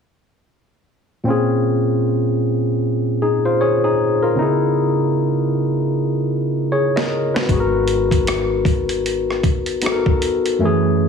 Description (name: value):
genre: R&B, neo-soul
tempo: 77 BPM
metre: 4/4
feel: swing 60% on 16ths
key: Bb phrygian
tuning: A4 = 439 Hz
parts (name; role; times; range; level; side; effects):
- barky tine electric piano; accompaniment; 1.2-11.1 s; Gb2 to Eb5; -16 LUFS; left 1 dB; overdrive
- boom bap sampler-style drum kit; drums; 7.0-10.6 s; hi-hat, kick drum, rim click, snare drum; -20 LUFS; equal; none
- deep dub fingered electric bass; bass; 7.5-10.6 s; Ab1; -26 LUFS; left 1 dB; none
room: moderate studio reverb, RT60 0.8 s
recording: heavily compressed radio sound, multiband compression, studio reverb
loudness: -16 LUFS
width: side -6 dB against mid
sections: 1.3-11.1 A section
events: drum fill 5.9-7.5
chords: 1.3 Bbm9; 4.4 Dbm9; 7.5 Abm9